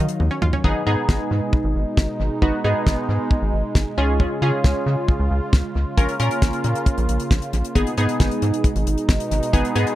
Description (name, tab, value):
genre	synth-pop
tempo	135 BPM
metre	4/4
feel	straight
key	unclear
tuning	A4 = 440 Hz
part	sweeping resonant pad	sustained chords	0.0-10.0 s	Cb3 to F5	-26 LUFS	right 2 dB	chorus
part	analog pluck	arpeggios	0.0-0.6 s	Db4 to F4	-29 LUFS	right 2 dB	chorus, analog delay
part	rubbery square bass	bass	0.0-9.9 s	Ab1 to Db3	-21 LUFS	equal	none
part	damped 70s drum kit	drums	0.1-10.0 s	hi-hat, kick drum, snare drum, toms	-20 LUFS	equal	analog delay
part	funky polysynth comp	accompaniment	0.6-10.0 s	Cb4 to Bb4	-24 LUFS	equal	chorus, analog delay
room	studio reverb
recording	echo-heavy mix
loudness	-18 LUFS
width	side -14 dB against mid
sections	0.6-10.0 A section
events	drum fill 0.2-0.6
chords	0.0 Ebmadd9; 0.6 Abm; 4.0 Db; 6.0 Bbm; 7.8 Abm